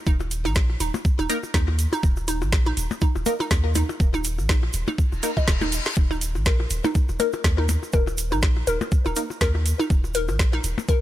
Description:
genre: minimal techno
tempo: 122 BPM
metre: 4/4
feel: swing 57% on 16ths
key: unclear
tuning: A4 = 440 Hz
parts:
  - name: hollow square pluck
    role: riff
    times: 0.1-10.9 s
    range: Eb4 to Eb5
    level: -28 LUFS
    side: right 1 dB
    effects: chorus, sidechain pumping, ping-pong delay
  - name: punchy sub bass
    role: bass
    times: 0.1-10.7 s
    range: Eb1 to Eb2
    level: -25 LUFS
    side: equal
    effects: tube saturation, sidechain pumping
  - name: electronic kick drum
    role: drums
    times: 0.1-11.0 s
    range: none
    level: -20 LUFS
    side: equal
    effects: overdrive
  - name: tube shaker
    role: percussion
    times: 0.1-11.0 s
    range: none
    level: -35 LUFS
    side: right 5 dB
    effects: none
  - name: percussion blips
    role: percussion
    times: 0.2-10.9 s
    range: none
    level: -32 LUFS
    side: left 7 dB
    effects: overdrive, ping-pong delay
  - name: garage drum kit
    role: drums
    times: 0.3-10.8 s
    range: hi-hat, snare drum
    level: -28 LUFS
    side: right 1 dB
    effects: overdrive
  - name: filtered dub chord stab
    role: stabs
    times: 1.3-9.2 s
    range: Bb3 to Bb4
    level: -30 LUFS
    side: left 1 dB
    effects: phaser, ping-pong delay
  - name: reverse cymbal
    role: sound effects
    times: 5.1-6.0 s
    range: none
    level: -31 LUFS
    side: left 4 dB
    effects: none
room: digital ambience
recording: none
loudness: -20 LUFS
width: side -14 dB against mid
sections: 0.0-11.0 A section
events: reverse cymbal 5.1-6.0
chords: 0.0 Eb5

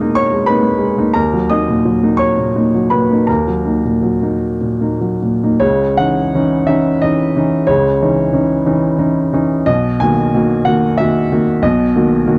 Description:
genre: neoclassical minimalist piano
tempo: 49-64 BPM (dotted quarters)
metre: 6/8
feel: rubato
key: C# dorian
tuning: A4 = 436 Hz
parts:
  - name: clear baby grand piano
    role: solo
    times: 0.0-12.4 s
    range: B1 to D#6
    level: -14 LUFS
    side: equal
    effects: none
room: small room ambience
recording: dry, close 1970s-style studio recording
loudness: -15 LUFS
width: mono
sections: 0.0-5.6 A section; 5.6-12.4 B section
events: none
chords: 0.0 G#madd9/B; 1.2 D#m; 5.6 C#madd9; 9.7 Bmaj7

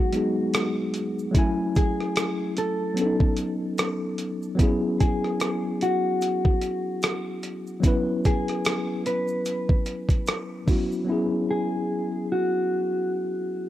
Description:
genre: lo-fi hip hop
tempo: 74 BPM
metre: 4/4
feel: swing 57% on 16ths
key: E major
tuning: A4 = 440 Hz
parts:
  - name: mellow electric guitar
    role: melody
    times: 0.0-13.7 s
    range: F#4 to B4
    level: -28 LUFS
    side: equal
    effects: none
  - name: tine electric piano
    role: accompaniment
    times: 0.0-13.7 s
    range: F#3 to G#5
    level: -26 LUFS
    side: left 1 dB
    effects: overdrive, fast stereo tremolo
  - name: dusty soul sampler-style drum kit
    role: drums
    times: 0.1-10.9 s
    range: hi-hat, kick drum, rim click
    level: -23 LUFS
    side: equal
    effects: overdrive
  - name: egg shaker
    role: percussion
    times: 0.1-11.1 s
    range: none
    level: -51 LUFS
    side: right 5 dB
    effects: none
room: light reverb, digital ambience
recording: rough home demo mix, cassette tape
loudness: -22 LUFS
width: side -13 dB against mid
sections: 0.0-11.1 A section; 11.1-13.7 B section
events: none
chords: 0.0 G#m7; 1.4 F#m7; 3.0 B9; 4.6 E69

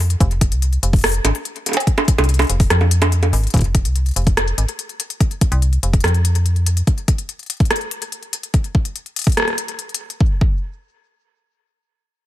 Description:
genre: IDM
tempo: 144 BPM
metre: 4/4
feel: straight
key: F minor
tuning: A4 = 440 Hz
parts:
  - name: metallic FM bass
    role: bass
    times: 0.0-6.8 s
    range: F1 to F2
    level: -16 LUFS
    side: equal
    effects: none
  - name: organic electronic drum kit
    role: drums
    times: 0.0-10.2 s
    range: bongos, hi-hat, rim click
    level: -20 LUFS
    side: equal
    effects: ping-pong delay
  - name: electronic kick drum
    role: drums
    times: 0.2-10.5 s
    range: none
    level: -15 LUFS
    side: equal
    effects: none
room: little or no reverb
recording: none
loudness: -15 LUFS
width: side -14 dB against mid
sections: 0.0-3.5 A section; 3.5-10.2 B section; 10.2-12.3 C section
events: break 3.1-3.5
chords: none

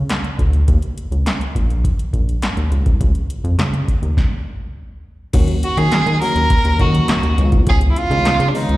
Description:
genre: early-eighties boogie funk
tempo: 103 BPM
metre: 4/4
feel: straight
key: Eb minor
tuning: A4 = 440 Hz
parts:
  - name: rubbery square bass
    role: bass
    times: 0.0-8.8 s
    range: Bb1 to Eb3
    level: -17 LUFS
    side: equal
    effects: none
  - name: electro analog drum machine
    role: drums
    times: 0.1-8.8 s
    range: crash cymbal, handclaps, hi-hat, kick drum, snare drum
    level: -18 LUFS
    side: equal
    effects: none
  - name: FM electric piano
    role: accompaniment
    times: 5.3-8.8 s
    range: Eb3 to Gb4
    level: -22 LUFS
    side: left 2 dB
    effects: chorus, slapback echo
  - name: warm violin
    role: melody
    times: 5.6-8.8 s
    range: D4 to Bb4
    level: -18 LUFS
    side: right 2 dB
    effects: slapback echo, tape echo
room: little or no reverb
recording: live gig heard through the venue's PA, recital hall reverb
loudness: -14 LUFS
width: side -17 dB against mid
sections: 0.0-5.3 A section; 5.3-8.8 B section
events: stop 4.2-5.3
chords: 0.0 N.C.; 0.7 Eb5; 2.7 N.C.; 5.3 Ebm7; 7.4 Db9

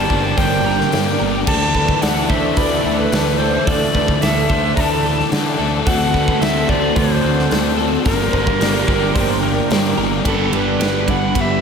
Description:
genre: rock, shoegaze and dream pop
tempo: 109 BPM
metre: 4/4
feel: straight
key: D mixolydian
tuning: A4 = 440 Hz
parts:
  - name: bright tenor recorder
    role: melody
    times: 0.0-11.6 s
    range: A4 to Bb5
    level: -22 LUFS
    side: left 1 dB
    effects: diffuse ambient delay
  - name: dark analog pad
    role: sustained chords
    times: 0.0-11.6 s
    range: G4 to D6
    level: -25 LUFS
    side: right 1 dB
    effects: chorus
  - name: twelve-string electric guitar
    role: arpeggios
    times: 0.0-11.6 s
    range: G4 to D5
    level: -28 LUFS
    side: right 5 dB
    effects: analog chorus, diffuse ambient delay
  - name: crunchy overdriven guitar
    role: riff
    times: 0.0-11.6 s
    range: G2 to Bb4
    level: -22 LUFS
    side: right 8 dB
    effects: reverse reverb
  - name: overdriven semi-hollow guitar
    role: riff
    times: 0.0-11.6 s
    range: G2 to Bb4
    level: -21 LUFS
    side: left 7 dB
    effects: wide subtle chorus
  - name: picked electric bass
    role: bass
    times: 0.0-11.6 s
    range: G1 to D3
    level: -22 LUFS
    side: equal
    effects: none
  - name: big rock drum kit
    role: drums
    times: 0.1-11.5 s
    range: crash cymbal, hi-hat, kick drum, ride cymbal, snare drum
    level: -21 LUFS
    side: equal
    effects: none
room: wet lush hall reverb, RT60 1.9 s, small room reverb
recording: dreamy mix soaked in reverb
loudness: -14 LUFS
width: side -6 dB against mid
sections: 0.0-10.3 A section; 10.3-11.6 B section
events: none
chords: 0.0 Gm; 1.5 Dsus2; 5.9 D7; 8.1 Gm; 10.3 G

